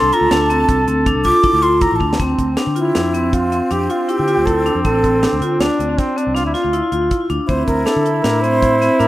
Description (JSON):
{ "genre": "progressive instrumental, band music in an uneven meter", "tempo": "159 BPM", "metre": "7/4", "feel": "straight", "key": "D minor", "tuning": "A4 = 441 Hz", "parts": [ { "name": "breathy mellow silver concert flute", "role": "melody", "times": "0.0-9.1 s", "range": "E4 to D6", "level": "-18 LUFS", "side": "right 1 dB", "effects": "digital delay" }, { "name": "warm flugelhorn", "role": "second line", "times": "0.0-9.1 s", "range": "C4 to A4", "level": "-21 LUFS", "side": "right 1 dB", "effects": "digital delay" }, { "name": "vibraphone with hard mallets", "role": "arpeggios", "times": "0.0-9.1 s", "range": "C4 to F4", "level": "-18 LUFS", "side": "left 1 dB", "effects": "digital delay" }, { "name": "fingered electric bass", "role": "bass", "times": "0.0-9.1 s", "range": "A1 to D3", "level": "-22 LUFS", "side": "equal", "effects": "none" }, { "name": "deep reggae drum kit", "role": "drums", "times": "0.1-9.1 s", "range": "hi-hat, kick drum, snare drum", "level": "-22 LUFS", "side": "equal", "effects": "none" } ], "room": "moderate plate reverb, RT60 2.2 s", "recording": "rough home demo mix", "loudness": "-14 LUFS", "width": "side -15 dB against mid", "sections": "0.0-2.2 A section; 2.2-9.1 B section", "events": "flute solo 0.0-2.2; drum fill 2.0", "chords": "0.0 Dm7; 7.5 F/D (rootless)" }